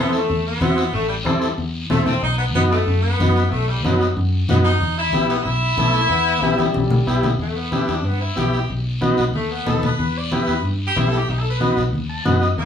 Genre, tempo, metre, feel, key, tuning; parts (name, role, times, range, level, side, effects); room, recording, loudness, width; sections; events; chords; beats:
latin, cumbia; 186 BPM; 4/4; straight; E harmonic minor; A4 = 440 Hz
bright saxophone section; melody; 0.0-12.7 s; F#3 to D5; -22 LUFS; left 1 dB
combo organ; accompaniment; 0.0-12.6 s; B3 to A5; -21 LUFS; equal
fingered electric bass; bass; 0.0-12.7 s; A1 to G2; -22 LUFS; left 1 dB
guiro; percussion; 0.1-12.7 s; -32 LUFS; left 4 dB
congas; percussion; 0.3-12.7 s; -24 LUFS; left 2 dB
bright trombone; second line; 5.8-7.2 s; E3 to B3; -26 LUFS; left 5 dB
wet small room reverb, RT60 0.5 s; band playing live in one room, small room ambience; -17 LUFS; side -8 dB against mid
0.0-7.4 A section; 7.4-12.7 B section
drum fill 6.6-7.4; saxophone section solo 7.4-12.7; transistor combo organ fill 11.9-12.6
0.0 Am; 2.2 B; 4.8 Em; 8.7 B7; 10.0 Em; 11.3 B
0.29 0.62 | 0.94 1.26 1.58 1.91 | 2.23 2.55 2.88 3.20 | 3.52 3.85 4.17 4.49 | 4.82 5.14 5.46 5.79 | 6.11 6.43 6.76 7.08 | 7.40 7.73 8.05 8.37 | 8.70 9.02 9.35 9.67 | 9.99 10.32 10.64 10.96 | 11.29 11.61 11.94 12.26 | 12.58